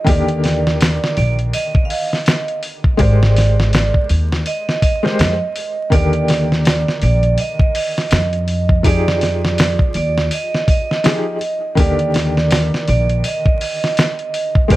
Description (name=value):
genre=trip hop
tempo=82 BPM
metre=4/4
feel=swing 58% on 16ths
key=unclear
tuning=A4 = 442 Hz
part: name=vibraphone with medium hard mallets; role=melody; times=0.0-14.8 s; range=D5 to F5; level=-21 LUFS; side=right 4 dB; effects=vintage 12-bit sampler grit, tape echo
part: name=felt-muted upright piano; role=accompaniment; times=0.0-14.8 s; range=D3 to C5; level=-22 LUFS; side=left 2 dB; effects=tremolo
part: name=upright bass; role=bass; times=0.1-14.8 s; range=Ab1 to F2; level=-16 LUFS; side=equal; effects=none
part: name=dusty soul sampler-style drum kit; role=drums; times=0.1-14.8 s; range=hi-hat, kick drum, snare drum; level=-16 LUFS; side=equal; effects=vintage 12-bit sampler grit
room=small room ambience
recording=vinyl crackle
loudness=-14 LUFS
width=side -16 dB against mid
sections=0.0-14.8 A section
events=none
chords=0.1 Ebmaj7; 3.0 Abmaj9; 5.9 Ebmaj7; 8.8 Fm9; 11.8 Ebmaj7